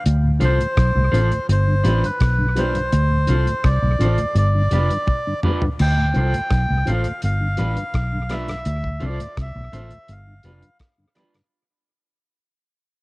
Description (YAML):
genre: roots reggae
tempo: 84 BPM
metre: 4/4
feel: straight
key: D dorian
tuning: A4 = 441 Hz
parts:
  - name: melodica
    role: melody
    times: 0.0-10.8 s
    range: B4 to G5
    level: -25 LUFS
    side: equal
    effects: cassette tape, analog delay
  - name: vintage muted fingered electric bass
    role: bass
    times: 0.1-10.6 s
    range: F1 to D2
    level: -18 LUFS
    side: equal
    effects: none
  - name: damped 70s drum kit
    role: drums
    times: 0.1-11.5 s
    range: crash cymbal, hi-hat, kick drum, rim click, toms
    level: -24 LUFS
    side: equal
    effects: cassette tape
  - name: mellow tonewheel organ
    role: accompaniment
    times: 0.2-11.4 s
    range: D2 to C4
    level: -27 LUFS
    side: left 1 dB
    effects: chorus vibrato, slow rotary speaker, cassette tape
  - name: electric guitar at the edge of break-up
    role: accompaniment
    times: 0.4-11.3 s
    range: D4 to C5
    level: -29 LUFS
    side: right 1 dB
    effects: cassette tape, analog delay
room: small room ambience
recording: home recording on cassette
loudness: -17 LUFS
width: side -23 dB against mid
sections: 0.0-5.8 A section; 5.8-11.5 B section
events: drum fill 5.1-5.8; fade-out 5.8-11.5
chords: 0.1 Dm7; 1.5 G7; 2.9 Dm7; 4.4 G7; 5.8 Dm7; 7.2 G7; 8.7 Dm7; 10.1 G7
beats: | 0.06 0.78 1.49 2.21 | 2.93 3.64 4.36 5.08 | 5.79 6.51 7.22 7.94 | 8.66 9.37 10.09 10.80